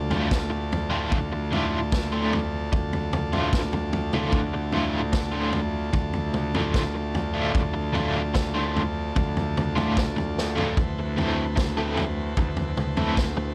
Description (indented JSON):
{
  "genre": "psychedelic rock",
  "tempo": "75 BPM",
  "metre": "4/4",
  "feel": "straight",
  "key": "D dorian",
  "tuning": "A4 = 440 Hz",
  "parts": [
    { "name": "combo organ", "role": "sustained chords", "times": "0.0-13.5 s", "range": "E4 to A5", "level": "-36 LUFS", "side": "equal", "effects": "spring reverb" },
    { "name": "fuzz fingered electric bass", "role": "bass", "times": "0.0-13.5 s", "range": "D2", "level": "-31 LUFS", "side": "equal", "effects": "overdrive" },
    { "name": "crunchy overdriven guitar", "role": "riff", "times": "0.1-13.4 s", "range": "A2 to A4", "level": "-30 LUFS", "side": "equal", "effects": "tremolo" },
    { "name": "vintage drum kit", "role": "drums", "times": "0.1-13.4 s", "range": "kick drum, snare drum, toms", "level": "-30 LUFS", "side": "equal", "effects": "none" }
  ],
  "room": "light reverb, studio ambience",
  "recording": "none",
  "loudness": "-25 LUFS",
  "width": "mono",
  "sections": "0.0-13.5 A section",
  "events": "drum fill 10.4-10.8",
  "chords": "0.0 Dm; 10.8 Amadd9/D"
}